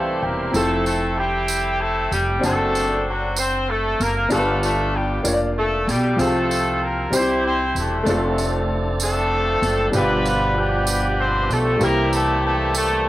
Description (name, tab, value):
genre	slow gospel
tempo	64 BPM (dotted quarters)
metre	6/8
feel	straight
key	F major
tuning	A4 = 440 Hz
part	clear horn section	melody	0.0-13.0 s	F#3 to C5	-21 LUFS	equal	cassette tape, tape echo
part	clear baby grand piano	accompaniment	0.0-13.1 s	G2 to A5	-24 LUFS	left 1 dB	cassette tape
part	tonewheel organ	sustained chords	0.0-0.5, 8.1-13.1 s	B2 to C5	-26 LUFS	right 2 dB	fast rotary speaker, overdrive, cassette tape
part	upright bass	bass	0.0-13.1 s	E1 to C2	-25 LUFS	equal	transformer saturation
part	tambourine	percussion	0.5-13.0 s	none	-29 LUFS	right 6 dB	none
room	moderate spring reverb, RT60 2.6 s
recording	home recording on cassette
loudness	-18 LUFS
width	side -15 dB against mid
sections	0.5-13.1 A section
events	grand piano fill 0.0-0.5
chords	0.0 C; 0.5 Fmaj7; 2.4 D7/F#; 4.3 G7; 5.2 Bb/F; 6.2 F/C; 7.1 C; 8.1 F6; 9.9 G7; 11.8 C7